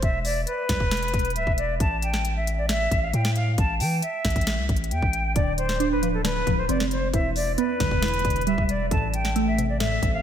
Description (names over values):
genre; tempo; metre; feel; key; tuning
hip hop, trap; 135 BPM; 4/4; half-time; A minor; A4 = 440 Hz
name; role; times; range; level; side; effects
bright concert flute; melody; 0.0-10.2 s; A4 to A5; -26 LUFS; equal; low-pass filter, ping-pong delay
long sustained 808-style bass; bass; 0.0-10.2 s; D1 to E3; -27 LUFS; equal; none
trap drum kit; drums; 0.0-10.1 s; hi-hat, kick drum, snare drum; -27 LUFS; equal; none
glassy wavetable pluck; accompaniment; 5.4-10.2 s; E2 to D4; -26 LUFS; right 1 dB; chorus, low-pass filter
room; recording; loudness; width
moderate lush hall reverb, RT60 2.0 s; dreamy mix soaked in reverb; -21 LUFS; side -9 dB against mid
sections
0.0-10.2 A section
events
none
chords
0.0 E5; 1.8 A7(no3); 5.4 Dm7; 7.1 Em7; 8.9 Am7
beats
| 0.03 0.47 0.91 1.36 | 1.80 2.25 2.69 3.14 | 3.58 4.03 4.47 4.91 | 5.36 5.80 6.25 6.69 | 7.14 7.58 8.03 8.47 | 8.91 9.36 9.80